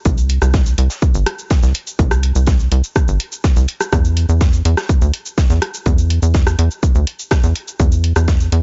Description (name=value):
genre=melodic techno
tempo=124 BPM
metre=4/4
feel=straight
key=unclear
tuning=A4 = 442 Hz
part: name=tight sequencer bass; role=bass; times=0.1-8.6 s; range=G1 to E2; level=-16 LUFS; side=equal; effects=sidechain pumping
part: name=electronic kick drum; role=drums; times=0.1-8.4 s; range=none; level=-16 LUFS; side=equal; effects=none
part: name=house drum kit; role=drums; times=0.1-8.6 s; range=hi-hat, rim click, shaker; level=-26 LUFS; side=equal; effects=sidechain pumping on perc, sidechain pumping on hats
part: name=tight funk drum kit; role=drums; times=0.1-8.6 s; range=hi-hat, snare drum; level=-34 LUFS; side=equal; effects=high-pass filter on hats, high-pass filter on snare, high-pass filter on room
room=little or no reverb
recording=dry, gritty hardware recording, nothing above 7.7 kHz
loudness=-16 LUFS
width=mono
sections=0.0-8.6 A section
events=none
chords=none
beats=| 0.06 0.54 1.02 1.51 | 1.99 2.47 2.96 3.44 | 3.93 4.41 4.89 5.38 | 5.86 6.34 6.83 7.31 | 7.80 8.28